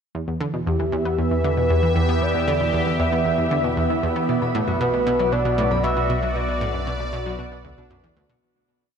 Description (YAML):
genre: ambient, sequencer-driven space music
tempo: 116 BPM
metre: 4/4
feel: straight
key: E minor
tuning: A4 = 438 Hz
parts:
  - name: analog pluck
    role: riff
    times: 0.1-8.4 s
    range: D2 to B3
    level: -25 LUFS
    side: equal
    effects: chorus, shimmer reverb, analog delay
  - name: analog drone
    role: bass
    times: 0.8-8.4 s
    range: B1 to E2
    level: -27 LUFS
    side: equal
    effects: chorus
  - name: sweeping resonant pad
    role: sustained chords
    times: 0.2-8.4 s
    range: B2 to E5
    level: -24 LUFS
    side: right 1 dB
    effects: chorus, shimmer reverb
  - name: expressive synth lead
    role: melody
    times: 0.7-7.9 s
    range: G4 to E5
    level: -24 LUFS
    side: equal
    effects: chorus, shimmer reverb, analog delay
  - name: concert harp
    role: arpeggios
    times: 4.3-9.0 s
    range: D4 to B5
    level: -33 LUFS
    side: right 1 dB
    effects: auto-pan, shimmer reverb, analog delay
room: wet huge ambient reverb, RT60 7.7 s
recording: none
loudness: -19 LUFS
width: side -7 dB against mid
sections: 0.1-8.4 A section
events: fade-out 5.7-8.4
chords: 0.1 Em; 4.3 Bm